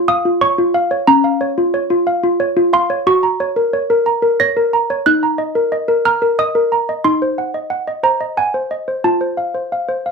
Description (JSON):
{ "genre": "classical, lullaby for handbells", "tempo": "90 BPM", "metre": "3/4", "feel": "straight", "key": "unclear", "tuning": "A4 = 441 Hz", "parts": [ { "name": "malleted handbells", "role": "solo", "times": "0.0-10.1 s", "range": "Bb3 to Bb6", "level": "-14 LUFS", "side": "equal", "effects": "none" } ], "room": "moderate small room ambience, RT60 0.5 s", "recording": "dark, warm production", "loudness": "-13 LUFS", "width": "side -4 dB against mid", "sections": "0.0-10.1 A section", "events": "none", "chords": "0.0 Bbm; 1.1 Bbm/Db; 3.1 Gb; 5.1 Ebm; 7.0 Cdim/Eb; 9.0 F", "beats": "0.42 | 1.08 1.75 2.41 | 3.07 3.73 4.39 | 5.05 5.71 6.38 | 7.04 7.70 8.37 | 9.04 9.72" }